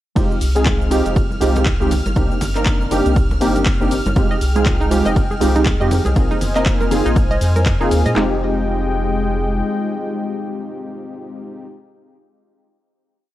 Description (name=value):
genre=deep house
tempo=120 BPM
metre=4/4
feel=swing 59% on 16ths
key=F minor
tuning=A4 = 439 Hz
part: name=warm analog keys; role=stabs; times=0.2-11.7 s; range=Ab3 to Bb4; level=-20 LUFS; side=equal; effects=chorus, sidechain pumping, analog delay
part: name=round analog bass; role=bass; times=0.2-9.6 s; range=F1 to Bb2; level=-20 LUFS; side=equal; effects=sidechain pumping
part: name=house drum kit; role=drums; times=0.2-8.3 s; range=handclaps, kick drum, snare drum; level=-19 LUFS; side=equal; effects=small room reverb
part: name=house drum kit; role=drums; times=0.2-8.1 s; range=handclaps, hi-hat, ride cymbal, shaker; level=-28 LUFS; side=left 1 dB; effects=small room reverb
part: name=congas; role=percussion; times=0.2-8.1 s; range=none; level=-28 LUFS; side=right 1 dB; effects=none
part: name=string machine, violins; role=texture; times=0.2-8.2 s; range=F6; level=-31 LUFS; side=equal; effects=ensemble chorus
part: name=warm analog pad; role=sustained chords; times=4.2-11.7 s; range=Ab3 to Ab5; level=-26 LUFS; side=left 2 dB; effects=chorus, sidechain pumping
part: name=analog pluck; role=arpeggios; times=4.3-8.4 s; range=Eb4 to Eb5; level=-24 LUFS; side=right 3 dB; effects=chorus, sidechain pumping, tape echo
room=digital ambience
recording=cassette tape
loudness=-15 LUFS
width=side -14 dB against mid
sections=0.2-8.2 drop; 8.2-12.2 final chord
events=drop 0.2-8.2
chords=0.2 Fm9; 1.9 Cm7; 4.2 Fm9; 6.2 Bb9sus4; 8.2 Fm9